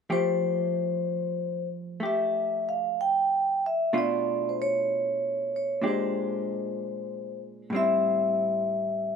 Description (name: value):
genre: jazz ballad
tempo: 63 BPM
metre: 4/4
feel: swing 67% on 8ths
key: F major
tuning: A4 = 440 Hz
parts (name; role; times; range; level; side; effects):
- vibraphone with medium mallets; melody; 0.1-9.2 s; C5 to G5; -26 LUFS; left 1 dB; none
- vintage hollow-body jazz guitar; accompaniment; 0.1-9.2 s; A2 to G4; -31 LUFS; right 1 dB; none
room: light reverb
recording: minimal, uncompressed stereo recording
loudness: -25 LUFS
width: side -6 dB against mid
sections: 0.1-9.2 A section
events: none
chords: 0.1 Fadd9; 3.9 Bm7b5; 5.8 Bb13; 7.7 Am7